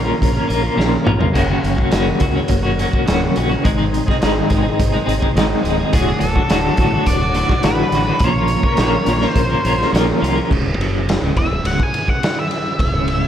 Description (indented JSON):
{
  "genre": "psychedelic rock",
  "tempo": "105 BPM",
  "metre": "4/4",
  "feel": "straight",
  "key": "unclear",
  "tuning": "A4 = 440 Hz",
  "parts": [
    { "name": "tonewheel organ", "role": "sustained chords", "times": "0.0-13.3 s", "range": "E3 to D6", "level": "-31 LUFS", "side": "right 4 dB", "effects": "chorus vibrato, fast rotary speaker" },
    { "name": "clean electric guitar", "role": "riff", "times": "0.0-13.3 s", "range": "C#2 to A#4", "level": "-18 LUFS", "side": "left 1 dB", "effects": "tremolo" },
    { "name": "fingered electric bass", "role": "bass", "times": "0.0-13.3 s", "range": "C#1 to C#2", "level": "-21 LUFS", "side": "equal", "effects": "none" },
    { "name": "raw garage drum kit", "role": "drums", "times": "0.2-13.2 s", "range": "crash cymbal, hi-hat, kick drum, ride cymbal, snare drum, toms", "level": "-19 LUFS", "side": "equal", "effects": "none" },
    { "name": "octave-fuzz lead guitar", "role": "melody", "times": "5.9-13.3 s", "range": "G#4 to G#5", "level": "-22 LUFS", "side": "equal", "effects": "distortion, slapback echo" }
  ],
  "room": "small room ambience",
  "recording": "none",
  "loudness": "-14 LUFS",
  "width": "side -10 dB against mid",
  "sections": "0.0-10.5 A section; 10.5-13.3 B section",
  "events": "drum fill 0.8-1.4; lead electric guitar solo 10.5-13.3",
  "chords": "0.0 A#m; 1.4 F#; 3.7 G#; 5.9 D; 8.2 A#m; 10.5 C#m",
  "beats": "0.23 0.80 | 1.37 1.94 2.51 3.08 | 3.65 4.22 4.79 5.37 | 5.94 6.51 7.08 7.65 | 8.22 8.79 9.36 9.93 | 10.50 11.08 11.65 12.22 | 12.79"
}